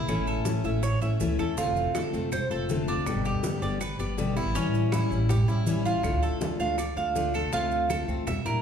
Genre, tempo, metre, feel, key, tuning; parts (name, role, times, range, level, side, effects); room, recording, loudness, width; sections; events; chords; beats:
latin, Cuban son and guajira; 161 BPM; 4/4; straight; D minor; A4 = 440 Hz
fingerpicked steel-string acoustic guitar; accompaniment; 0.0-8.6 s; B2 to G4; -29 LUFS; left 3 dB
Cuban tres; arpeggios; 0.0-8.6 s; C#4 to F5; -31 LUFS; right 4 dB
upright bass; bass; 0.0-8.6 s; F1 to D3; -29 LUFS; right 1 dB
bongos; percussion; 0.1-8.6 s; -40 LUFS; left 4 dB
claves; percussion; 0.1-8.5 s; -44 LUFS; right 5 dB
congas; percussion; 0.1-8.6 s; -37 LUFS; equal
maracas; percussion; 0.1-8.6 s; -45 LUFS; right 7 dB
wet large studio reverb, RT60 1.2 s; heard from further back in the room; -24 LUFS; side -8 dB against mid
0.0-7.5 A section; 7.5-8.6 B section
0.1 A; 1.6 F6; 3.1 G; 4.6 A7; 6.0 Dm; 7.5 Dm7
| 0.09 0.46 0.83 1.20 | 1.57 1.95 2.32 2.69 | 3.06 3.44 3.81 4.18 | 4.55 4.92 5.29 5.67 | 6.04 6.41 6.78 7.16 | 7.53 7.90 8.27